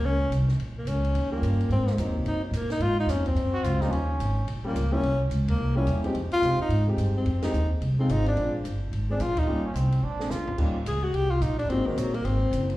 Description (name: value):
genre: jazz, small-group swing and bop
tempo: 216 BPM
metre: 4/4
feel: swing 62% on 8ths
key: Eb mixolydian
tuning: A4 = 439 Hz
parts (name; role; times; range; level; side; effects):
- warm tenor saxophone; melody; 0.0-12.7 s; Eb3 to Ab4; -28 LUFS; left 1 dB; slapback echo
- upright bass; bass; 0.0-12.8 s; Gb1 to C3; -26 LUFS; equal; none
- compact cocktail drum kit; drums; 0.3-12.7 s; crash cymbal, hi-hat, kick drum, ride cymbal, snare drum, toms; -36 LUFS; equal; none
- warm grand piano; accompaniment; 1.3-12.1 s; Gb3 to Ab4; -32 LUFS; left 1 dB; slapback echo
- breathy trumpet; second line; 3.5-4.5, 9.7-10.6 s; C4 to Gb4; -33 LUFS; right 2 dB; slapback echo
room: light reverb, small room ambience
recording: live gig heard through the venue's PA, club reverb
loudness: -23 LUFS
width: side -17 dB against mid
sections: 0.0-10.6 A section; 10.6-12.8 B section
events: band accent 5.4, 7.4, 9.3; drum fill 10.0-10.6; tenor saxophone solo 10.6-12.8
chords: 0.0 N.C.; 0.6 Bbm; 1.1 Eb7; 1.7 Ab7; 3.9 Eb7; 5.0 C7b9; 6.1 Fm7; 8.4 Bb7; 9.5 Eb7; 10.0 Bb7; 10.6 Eb7; 11.7 Ab7